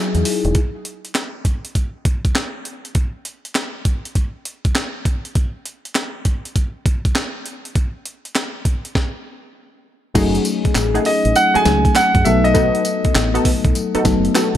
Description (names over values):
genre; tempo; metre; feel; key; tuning
R&B, new jack swing; 100 BPM; 4/4; swing 65% on 16ths; F# dorian; A4 = 443 Hz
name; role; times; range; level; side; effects
mellow FM electric piano; accompaniment; 0.0-0.6, 10.1-14.6 s; F#3 to A4; -19 LUFS; left 3 dB; chorus
deep dub fingered electric bass; bass; 0.1-0.5, 10.2-14.6 s; E1 to F#2; -20 LUFS; right 1 dB; none
breakbeat sampler-style drum kit; drums; 0.1-14.6 s; crash cymbal, handclaps, hi-hat, kick drum, snare drum, tambourine; -19 LUFS; equal; none
funky polysynth comp; stabs; 10.1-14.6 s; A3 to A4; -23 LUFS; right 1 dB; chorus
clear grand piano; melody; 11.1-13.6 s; D#5 to G#5; -17 LUFS; right 1 dB; none
room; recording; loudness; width
light reverb, digital ambience; none; -16 LUFS; side -11 dB against mid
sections
0.6-10.2 A section; 10.2-14.6 B section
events
break 0.0-0.6; stop 9.0-10.2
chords
0.0 Emaj9; 0.6 N.C.; 10.2 F#m69; 12.3 B7